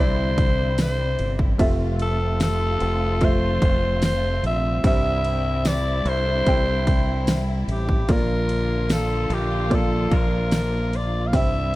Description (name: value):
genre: pop ballad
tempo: 74 BPM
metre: 4/4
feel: straight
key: unclear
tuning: A4 = 440 Hz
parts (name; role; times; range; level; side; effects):
- raspy alto saxophone; melody; 0.0-11.8 s; G4 to F5; -25 LUFS; left 1 dB; none
- warm upright piano; accompaniment; 0.0-11.8 s; G2 to G5; -28 LUFS; right 1 dB; none
- warm studio string section; sustained chords; 0.0-11.8 s; C3 to F4; -29 LUFS; equal; none
- modern bright fingered electric bass; bass; 0.0-11.8 s; F1 to C2; -24 LUFS; equal; none
- pop drum kit; drums; 0.4-11.5 s; kick drum, ride cymbal, snare drum; -22 LUFS; equal; none
- tambourine; percussion; 0.8-10.7 s; none; -40 LUFS; left 6 dB; none
room: small room ambience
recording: none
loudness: -19 LUFS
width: side -18 dB against mid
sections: 0.0-11.8 A section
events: drum fill 11.3-11.8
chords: 0.0 Cadd9; 1.6 Fmaj7; 4.8 C; 8.1 Bb